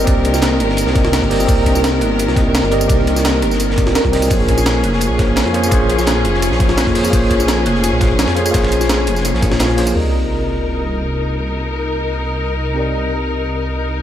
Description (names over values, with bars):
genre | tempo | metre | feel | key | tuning
liquid drum and bass | 170 BPM | 4/4 | straight | C phrygian | A4 = 440 Hz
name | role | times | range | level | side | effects
mellow tine electric piano | accompaniment | 0.0-14.0 s | Bb3 to Eb5 | -20 LUFS | equal | medium stereo tremolo, low-pass filter, tape echo
rich studio string section | sustained chords | 0.0-14.0 s | Eb3 to Bb4 | -22 LUFS | left 2 dB | sidechain pumping
swelling detuned saw bass | bass | 0.0-14.0 s | F1 to F2 | -19 LUFS | equal | none
kalimba | arpeggios | 0.1-9.8 s | Bb3 to Bb4 | -22 LUFS | right 1 dB | analog delay
breakbeat sampler-style drum kit | drums | 0.1-9.9 s | hi-hat, snare drum, tambourine | -21 LUFS | equal | studio reverb
crunchy breakbeat drum kit | drums | 0.1-10.0 s | hi-hat, ride cymbal, snare drum | -28 LUFS | equal | high-pass filter on cymbals, studio reverb, high-pass filter on hats, high-pass filter on snare, high-pass filter on room
electronic kick drum | drums | 0.1-9.5 s | none | -17 LUFS | equal | studio reverb
sub drop | sound effects | 10.0-11.4 s | none | -22 LUFS | equal | none
room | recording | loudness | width
moderate plate reverb, RT60 1.8 s, small room ambience | dreamy mix soaked in reverb | -13 LUFS | side -10 dB against mid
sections
0.0-10.0 A section; 10.0-14.0 B section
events
drop 0.0-10.0; kick drops out 9.6-10.0; impact 10.0-11.4; filter sweep on tine electric piano 10.0-14.0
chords
0.0 Cm9; 4.3 Bbm9; 10.0 Cm9